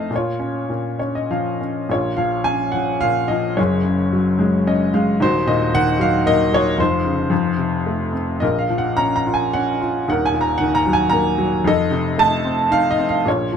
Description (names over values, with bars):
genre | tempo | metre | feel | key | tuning
classical, lyrical solo piano | 96-116 BPM | 3/4 | rubato | Bb minor | A4 = 440 Hz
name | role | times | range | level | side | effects
clear upright piano | solo | 0.0-13.6 s | Eb1 to Bb5 | -16 LUFS | equal | none
room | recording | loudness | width
light reverb | dark, warm production | -16 LUFS | side -7 dB against mid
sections
0.0-1.9 A section; 1.9-13.6 A section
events
upright piano fill 0.7-1.9, 4.4-5.2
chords
0.1 Bbm; 3.6 Gbsus2; 5.2 Ebm; 6.8 Dbmaj7/F; 7.3 F; 8.4 Bbm; 10.1 Ebm; 11.7 F7